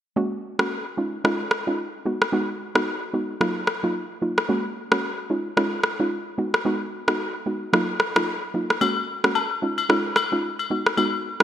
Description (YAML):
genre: afrobeats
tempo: 111 BPM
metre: 4/4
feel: swing 58% on 16ths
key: unclear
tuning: A4 = 440 Hz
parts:
  - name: soft round pluck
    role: accompaniment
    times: 0.2-11.4 s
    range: Gb3 to Gb4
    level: -25 LUFS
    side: right 1 dB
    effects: chorus
  - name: electronic rim click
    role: drums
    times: 0.6-11.4 s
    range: none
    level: -24 LUFS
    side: equal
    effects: gated reverb
  - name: agogo bells and woodblock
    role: percussion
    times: 8.8-11.1 s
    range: none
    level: -25 LUFS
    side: left 7 dB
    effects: none
room: moderate lush hall reverb, RT60 2.3 s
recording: bright 1980s-style digital production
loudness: -22 LUFS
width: side -11 dB against mid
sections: 0.2-11.4 A section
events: none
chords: 0.2 Gbadd9; 1.0 Dbadd9; 2.1 Abm7; 3.4 Ebmadd9; 4.5 Gbadd9; 5.3 Dbadd9; 6.4 Abm7; 7.7 Ebmadd9; 8.8 Gbadd9; 9.6 Dbadd9; 10.7 Abm7